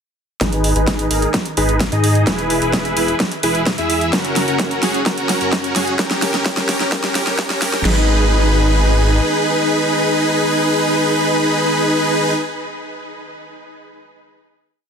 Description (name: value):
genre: EDM, festival progressive house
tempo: 129 BPM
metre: 4/4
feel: straight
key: G# minor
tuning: A4 = 440 Hz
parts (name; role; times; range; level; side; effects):
- dense compressed supersaw; riff; 0.4-12.3 s; C#4 to E5; -17 LUFS; equal; sidechain pumping, low-pass filter, dub echo
- wide detuned saw bass; bass; 0.4-9.2 s; E1 to G#2; -20 LUFS; equal; chorus, sidechain pumping
- big-room dance drum kit; drums; 0.4-8.0 s; crash cymbal, kick drum, snare drum; -23 LUFS; equal; high-pass filter on kick, high-pass filter on snare, high-pass filter on cymbals, high-pass filter on room
- big-room dance drum kit; drums; 0.4-7.8 s; hi-hat, snare drum; -22 LUFS; right 1 dB; none
room: light reverb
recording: dense, heavily limited modern master, high-pass filter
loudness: -14 LUFS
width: side -6 dB against mid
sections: 0.4-7.9 build; 7.9-11.6 final chord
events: build-up 0.4-7.9; drum fill 0.4-7.9; filter sweep on supersaw synth 0.4-7.9; filter sweep 0.4-7.9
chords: 0.4 G#m; 2.3 E; 4.1 F#; 6.0 Gdim; 7.9 G#m